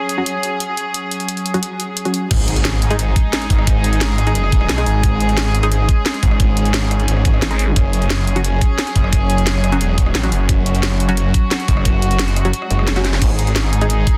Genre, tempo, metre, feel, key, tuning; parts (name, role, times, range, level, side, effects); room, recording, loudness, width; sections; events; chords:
dark technical drum and bass; 176 BPM; 4/4; straight; A4 = 441 Hz
warm studio string section; sustained chords; 0.0-14.2 s; F#3 to G#4; -24 LUFS; equal; sidechain pumping
drum and bass drum kit; drums; 0.1-14.1 s; crash cymbal, hi-hat, rim click, snare drum; -24 LUFS; equal
filtered dub chord stab; stabs; 0.2-13.9 s; F#3 to G#4; -27 LUFS; equal; subtle chorus, delay
snarling distorted saw bass; bass; 2.3-14.1 s; E1 to B1; -20 LUFS; equal; distortion, overdrive
electronic kick drum; drums; 2.3-14.1 s; -18 LUFS; equal
impact, swell and zap; sound effects; 2.4-3.7, 12.7-13.2 s; -30 LUFS; equal
vowel-sweep wobble bass; bass; 7.4-7.7 s; G#1; -19 LUFS; equal; chorus
little or no reverb; dense, heavily limited modern master; -17 LUFS; mono
0.0-2.3 A section; 2.3-14.2 B section
drop 2.3-14.2; impact 2.3-3.7; kick drops out 12.5-13.2; swell 12.7-13.2; drum fill 13.0
0.0 F#5; 2.3 G#5; 7.8 F#5; 13.2 G#5